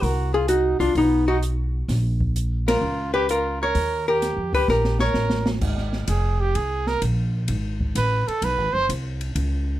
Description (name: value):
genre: jazz, small-group swing and bop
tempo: 129 BPM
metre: 4/4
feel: swing 68% on 8ths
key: unclear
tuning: A4 = 441 Hz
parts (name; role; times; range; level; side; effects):
- archtop guitar, miked and amplified; melody; 0.0-5.5 s; D#4 to Db5; -22 LUFS; left 2 dB; plate reverb
- clear trumpet; second line; 0.0-8.9 s; B3 to C5; -25 LUFS; right 4 dB; none
- upright bass; bass; 0.0-9.8 s; F1 to F2; -24 LUFS; equal; none
- open jazz drum kit; drums; 0.0-9.5 s; crash cymbal, hi-hat, kick drum, ride cymbal, snare drum; -29 LUFS; equal; none
room: light reverb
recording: dark, warm production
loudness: -20 LUFS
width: side -14 dB against mid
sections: 0.0-5.6 A section; 5.6-9.8 B section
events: band accent 2.6; drum fill 4.7-5.6; trumpet solo 5.6-9.8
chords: 0.0 Cm7b5; 1.0 B; 1.9 Bbm; 3.8 Eb7; 5.6 Ab69; 7.5 Gbdim (rootless)